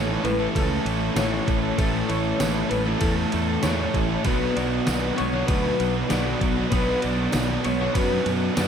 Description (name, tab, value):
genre	rock, shoegaze and dream pop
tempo	97 BPM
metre	4/4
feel	straight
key	A major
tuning	A4 = 440 Hz
part	electric guitar through a small old amp	arpeggios	0.0-8.7 s	A4 to D5	-29 LUFS	left 3 dB	ensemble chorus, slapback echo
part	biting overdriven guitar	riff	0.0-8.7 s	A2 to A4	-29 LUFS	right 12 dB	reverse reverb
part	crunchy overdriven guitar	riff	0.0-8.7 s	A2 to B3	-28 LUFS	equal	none
part	thick fuzz guitar	riff	0.0-8.7 s	A2 to B3	-30 LUFS	left 10 dB	distortion, analog chorus
part	fuzz fingered electric bass	bass	0.0-8.7 s	A1 to F#2	-28 LUFS	equal	overdrive
part	detuned 8-bit digital drum machine	drums	0.1-8.7 s	kick drum, ride cymbal, snare drum	-28 LUFS	equal	none
part	tambourine	percussion	1.2-8.7 s	none	-40 LUFS	right 8 dB	none
room	light reverb, digital ambience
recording	none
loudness	-21 LUFS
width	side -8 dB against mid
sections	0.0-8.7 A section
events	none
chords	0.0 A; 4.3 Bm